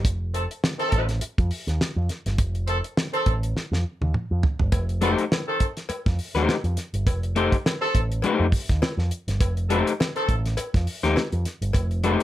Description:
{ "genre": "funk", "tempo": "103 BPM", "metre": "4/4", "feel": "swing 56% on 16ths", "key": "F mixolydian", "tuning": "A4 = 440 Hz", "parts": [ { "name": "picked electric bass with an envelope filter", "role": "bass", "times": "0.0-12.2 s", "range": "F1 to F2", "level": "-24 LUFS", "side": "equal", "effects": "none" }, { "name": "damped 70s drum kit", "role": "drums", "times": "0.0-12.2 s", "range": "hi-hat, kick drum, snare drum, toms", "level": "-24 LUFS", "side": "right 1 dB", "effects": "none" }, { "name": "mellow horn section", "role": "second line", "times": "0.3-12.1 s", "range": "Eb3 to A4", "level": "-26 LUFS", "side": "equal", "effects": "none" }, { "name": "cowbell", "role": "percussion", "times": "4.7-11.9 s", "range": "none", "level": "-34 LUFS", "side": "left 3 dB", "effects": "none" }, { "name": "electric guitar at the edge of break-up", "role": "accompaniment", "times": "5.0-12.2 s", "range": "A3 to C5", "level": "-23 LUFS", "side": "left 4 dB", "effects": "none" } ], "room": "light reverb", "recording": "none", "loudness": "-22 LUFS", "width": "side -14 dB against mid", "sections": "0.0-12.2 A section", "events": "break 0.0-4.7; drum fill 3.6-4.7", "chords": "0.0 F9" }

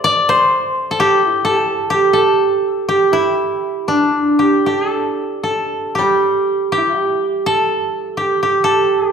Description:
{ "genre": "japanese traditional, Japanese chamber music", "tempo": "54-65 BPM", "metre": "4/4", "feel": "rubato", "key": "unclear", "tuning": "A4 = 440 Hz", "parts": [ { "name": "koto", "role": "melody", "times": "0.0-9.1 s", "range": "D4 to D5", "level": "-16 LUFS", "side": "left 3 dB", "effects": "none" }, { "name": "concert harp", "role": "second line", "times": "0.0-9.1 s", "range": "D4 to E5", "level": "-17 LUFS", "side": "right 3 dB", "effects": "none" }, { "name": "koto", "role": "accompaniment", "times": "6.0-8.9 s", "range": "G3", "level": "-25 LUFS", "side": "equal", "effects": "none" } ], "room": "wet recital hall reverb, RT60 1.4 s", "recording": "recorded in a church or concert hall", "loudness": "-13 LUFS", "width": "side -7 dB against mid", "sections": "0.0-6.0 A section; 6.0-9.1 B section", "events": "none", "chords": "none" }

